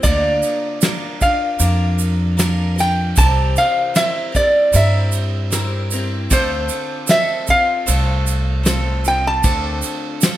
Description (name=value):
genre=acoustic folk duo or small band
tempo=77 BPM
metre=4/4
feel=straight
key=unclear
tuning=A4 = 441 Hz
part: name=lap resonator guitar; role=melody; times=0.0-10.2 s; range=C5 to A5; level=-17 LUFS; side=equal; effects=none
part: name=picked twelve-string acoustic guitar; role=accompaniment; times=0.0-10.4 s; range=C3 to Bb4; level=-26 LUFS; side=left 3 dB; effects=none
part: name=upright bass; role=bass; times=0.0-9.8 s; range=C2 to G2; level=-18 LUFS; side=equal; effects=none
part: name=soft brush drum kit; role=drums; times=0.0-10.4 s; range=kick drum, ride cymbal, snare drum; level=-22 LUFS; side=equal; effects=none
part: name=tube shaker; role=percussion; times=0.0-10.4 s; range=none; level=-24 LUFS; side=right 7 dB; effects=none
room=moderate large studio reverb, RT60 0.9 s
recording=none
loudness=-15 LUFS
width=side -13 dB against mid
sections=0.0-10.4 A section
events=none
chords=0.0 Bb/D; 3.2 C7; 6.3 F/D; 9.4 Dm7